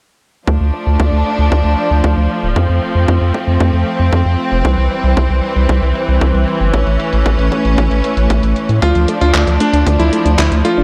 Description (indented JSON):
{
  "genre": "italo disco",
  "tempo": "115 BPM",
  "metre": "4/4",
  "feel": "straight",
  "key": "D minor",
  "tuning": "A4 = 439 Hz",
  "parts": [
    { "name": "rich symphonic string section", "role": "sustained chords", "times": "0.5-10.8 s", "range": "E3 to D4", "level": "-19 LUFS", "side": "equal", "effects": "none" },
    { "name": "round analog bass", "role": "bass", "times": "0.5-10.8 s", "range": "D1 to A2", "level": "-16 LUFS", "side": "equal", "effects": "tube saturation" },
    { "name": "clean 12-bit digital drum machine", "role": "drums", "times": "0.5-10.8 s", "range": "handclaps, hi-hat", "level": "-26 LUFS", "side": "equal", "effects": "overdrive, low-pass filter on hats, low-pass filter on snare, low-pass filter on room, gated reverb" },
    { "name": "electronic kick drum", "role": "drums", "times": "0.5-10.5 s", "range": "none", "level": "-21 LUFS", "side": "equal", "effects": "high-pass filter on kick" },
    { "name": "clear electric grand piano", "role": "melody", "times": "8.8-10.8 s", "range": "D4 to F4", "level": "-18 LUFS", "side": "equal", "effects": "delay" },
    { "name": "soft round pluck", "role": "arpeggios", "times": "8.8-10.8 s", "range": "D3 to D4", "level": "-23 LUFS", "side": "equal", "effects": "chorus, tape echo" }
  ],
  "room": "light reverb",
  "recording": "none",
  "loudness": "-14 LUFS",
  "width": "mono",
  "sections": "0.5-10.8 A section",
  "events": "filter sweep on drum 0.5-10.8",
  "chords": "0.5 Dm; 2.6 F; 4.6 C; 6.7 A; 8.8 Dm"
}